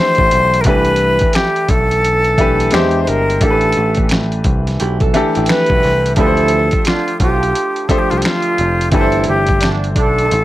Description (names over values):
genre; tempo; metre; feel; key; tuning
R&B, neo-soul; 87 BPM; 4/4; swing 63% on 16ths; C major; A4 = 439 Hz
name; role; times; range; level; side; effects
breathy silver concert flute; melody; 0.0-10.4 s; F4 to B#4; -15 LUFS; equal; slapback echo
clear baby grand piano; accompaniment; 0.0-10.4 s; E3 to C5; -19 LUFS; left 1 dB; none
dusty soul sampler-style drum kit; drums; 0.1-10.4 s; finger snaps, hi-hat, kick drum, snare drum; -17 LUFS; equal; overdrive
picked electric bass; bass; 0.2-10.4 s; F1 to E2; -18 LUFS; equal; none
vintage hollow-body jazz guitar; second line; 4.8-6.1 s; E4 to B4; -24 LUFS; right 7 dB; none
mellow horn section; stabs; 6.2-10.4 s; D3 to F4; -22 LUFS; right 6 dB; none
room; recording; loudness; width
light reverb; none; -12 LUFS; side -15 dB against mid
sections
0.0-10.4 A section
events
none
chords
0.0 Gsus24; 0.7 Cmaj9; 2.7 E7alt; 3.4 Am9; 6.2 Dm7; 8.9 Gsus24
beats
| 0.65 1.34 2.03 2.72 | 3.41 4.10 4.79 5.48 | 6.17 6.86 7.55 8.24 | 8.93 9.62 10.31